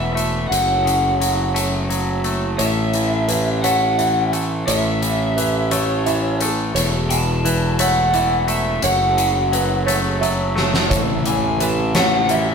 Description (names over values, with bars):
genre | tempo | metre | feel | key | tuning
post-rock | 58 BPM (dotted quarters) | 6/8 | straight | A major | A4 = 439 Hz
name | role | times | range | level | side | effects
lead guitar through a small cranked amp | melody | 0.0-12.5 s | C#5 to A5 | -21 LUFS | equal | overdrive
pedal harmonium | sustained chords | 0.0-12.5 s | E3 to A4 | -30 LUFS | right 4 dB | none
twangy electric guitar | arpeggios | 0.0-12.5 s | E2 to A3 | -23 LUFS | left 4 dB | none
fuzz fingered electric bass | bass | 0.0-12.5 s | E1 to A1 | -22 LUFS | equal | overdrive
huge arena drum kit | drums | 0.2-12.5 s | hi-hat, kick drum, snare drum | -24 LUFS | left 1 dB | none
felt-muted upright piano | arpeggios | 2.6-12.5 s | B4 to E5 | -27 LUFS | right 6 dB | none
room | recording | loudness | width
moderate stone room reverb, RT60 1.0 s | band playing live in one room | -16 LUFS | side -6 dB against mid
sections
0.0-12.5 A section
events
drum fill 10.6-10.9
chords
0.0 Esus4; 0.5 F#m; 2.6 A; 6.8 Esus4; 8.8 F#m; 10.9 A